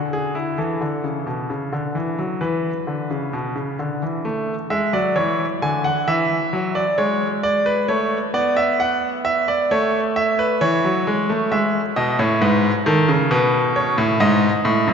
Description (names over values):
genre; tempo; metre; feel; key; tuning
classical, baroque-style two-part invention for grand piano; 66 BPM; 4/4; straight; A major; A4 = 442 Hz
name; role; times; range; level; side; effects
bright grand piano; solo; 0.0-14.9 s; F#2 to G#5; -18 LUFS; equal; none
room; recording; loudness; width
wet cathedral reverb, RT60 4.5 s; recorded in a church or concert hall, nothing above 7.8 kHz; -18 LUFS; side -6 dB against mid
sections
0.0-4.2 A section; 4.2-14.9 B section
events
none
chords
0.0 N.C.; 0.6 Esus4; 2.4 E5; 4.2 A; 6.1 E7; 7.9 A; 11.5 E; 13.3 B7